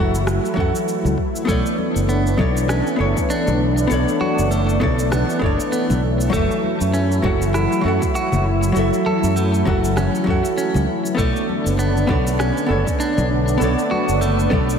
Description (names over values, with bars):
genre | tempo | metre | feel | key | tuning
sunset chillout | 99 BPM | 4/4 | swing 57% on 16ths | B minor | A4 = 444 Hz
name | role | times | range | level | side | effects
vintage hollow-body jazz guitar | accompaniment | 0.0-14.8 s | F#3 to F#5 | -22 LUFS | left 1 dB | auto-pan, ping-pong delay
lush unison pad | sustained chords | 0.0-14.8 s | D3 to E4 | -22 LUFS | equal | chorus
fretless electric bass | bass | 0.0-14.8 s | F#1 to F#2 | -20 LUFS | equal | tube saturation
electronic shaker and rim click | drums | 0.1-14.8 s | none | -32 LUFS | equal | studio reverb
electronic kick drum | drums | 0.6-14.7 s | none | -24 LUFS | equal | overdrive, studio reverb
congas | percussion | 1.1-14.7 s | none | -30 LUFS | left 4 dB | none
clean electric guitar | arpeggios | 1.5-14.5 s | A3 to A4 | -25 LUFS | right 2 dB | ping-pong delay
room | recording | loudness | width
wet lush hall reverb, RT60 2.9 s | dreamy mix soaked in reverb | -16 LUFS | side -7 dB against mid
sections
0.0-14.8 A section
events
none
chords
0.0 F#m7; 1.5 Bm9; 6.3 F#m7; 11.2 Bm9